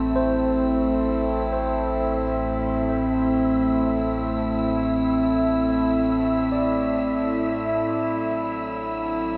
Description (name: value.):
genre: ambient.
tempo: free time.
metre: none.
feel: none.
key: A dorian.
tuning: A4 = 439 Hz.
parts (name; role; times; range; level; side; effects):
evolving wavetable pad; sustained chords; 0.0-9.4 s; A2 to E4; -24 LUFS; equal; chorus, built-in reverb, shimmer reverb.
barky tine electric piano; arpeggios; 0.0-9.4 s; A4 to D5; -33 LUFS; equal; fast tremolo, diffuse ambient delay, shimmer reverb.
warm sub bass; bass; 0.0-9.4 s; A1; -36 LUFS; equal; none.
pedal harmonium; drone; 0.0-9.4 s; A3 to E4; -33 LUFS; equal; none.
wind-like tuned noise texture; texture; 0.0-9.4 s; E5 to E6; -38 LUFS; equal; built-in reverb, lush chorus, shimmer reverb.
room: wet plate reverb, RT60 2.6 s.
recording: dreamy mix soaked in reverb.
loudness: -23 LUFS.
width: mono.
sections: 0.0-9.4 A section.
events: filter sweep on ambient pad 0.0-9.4.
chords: 0.0 Am.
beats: free time.